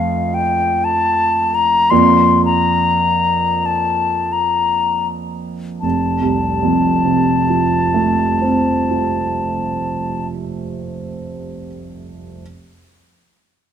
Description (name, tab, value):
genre	classical, romantic duo for flute and grand piano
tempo	38-64 BPM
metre	3/4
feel	rubato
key	F major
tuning	A4 = 440 Hz
part	concert flute	melody	0.0-10.3 s	F5 to C6	-16 LUFS	left 4 dB	none
part	warm baby grand piano	accompaniment	0.0-12.4 s	F1 to Eb5	-18 LUFS	right 4 dB	none
room	moderate recital hall reverb, RT60 1.7 s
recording	close, detailed microphones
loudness	-14 LUFS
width	side -8 dB against mid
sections	0.0-5.8 A section; 5.8-10.2 B section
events	slowing down 0.0-5.8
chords	0.0 F7; 1.9 Bb/F; 5.8 F